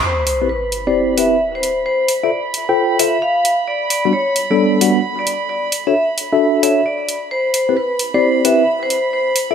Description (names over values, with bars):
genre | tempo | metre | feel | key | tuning
UK garage, two-step garage | 132 BPM | 4/4 | swing 66% on 16ths | unclear | A4 = 438 Hz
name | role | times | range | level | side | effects
vibraphone with hard mallets | melody | 0.0-9.5 s | B4 to F#5 | -18 LUFS | equal | tape echo
warm chamber violin section | sustained chords | 0.0-9.5 s | B5 | -25 LUFS | right 3 dB | low-pass filter
sub drop | sound effects | 0.0-1.9 s | none | -27 LUFS | equal | none
electronic hi-hat | drums | 0.3-9.5 s | none | -20 LUFS | right 1 dB | studio reverb
mellow tine electric piano | stabs | 0.4-9.5 s | G3 to G5 | -17 LUFS | left 2 dB | medium stereo tremolo, tape echo
room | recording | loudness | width
light reverb, small room ambience | none | -14 LUFS | side -7 dB against mid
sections
0.0-9.5 A section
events
impact 0.0-1.9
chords
0.0 Cmaj9; 1.6 Fadd9(#11); 3.7 Gmaj9; 5.3 Bm7; 7.3 Cmaj9; 8.9 F5 (rootless)